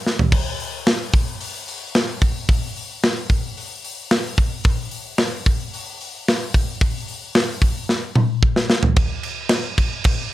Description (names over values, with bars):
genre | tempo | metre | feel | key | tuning
metal | 111 BPM | 4/4 | straight | none | none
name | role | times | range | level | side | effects
tight metal drum kit | drums | 0.1-10.2 s | crash cymbal, hi-hat, kick drum, snare drum, toms | -18 LUFS | equal | none
room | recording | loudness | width
light reverb | none | -18 LUFS | side -15 dB against mid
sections
0.0-9.0 A section; 9.0-10.3 B section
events
drum fill 0.1, 7.9-9.0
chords
none